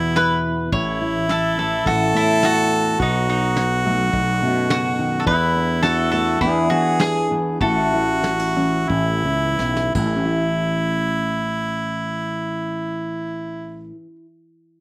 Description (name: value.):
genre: acoustic folk duo or small band.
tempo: 79-106 BPM.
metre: 4/4.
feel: straight.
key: A major.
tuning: A4 = 441 Hz.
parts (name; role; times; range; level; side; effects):
warm harmonica; second line; 0.0-13.9 s; E4 to A4; -22 LUFS; right 1 dB; none.
fingerpicked steel-string acoustic guitar; accompaniment; 0.0-14.3 s; E2 to F#4; -25 LUFS; left 1 dB; none.
fretless electric bass; bass; 0.0-13.9 s; A1 to E3; -23 LUFS; equal; none.
mandolin; melody; 0.2-9.6 s; D#4 to C#5; -22 LUFS; left 1 dB; none.
soft brush drum kit; drums; 0.2-10.1 s; crash cymbal, kick drum, snare drum; -24 LUFS; equal; none.
room: little or no reverb.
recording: recorded outdoors, with no room sound.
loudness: -17 LUFS.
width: side -22 dB against mid.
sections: 0.0-10.3 A section; 10.3-13.3 B section.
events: slowing down 5.3-10.3; drum fill 9.6-10.3.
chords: 0.0 E5; 0.7 A; 3.0 B7; 5.3 E7sus4; 6.4 E7; 7.6 A.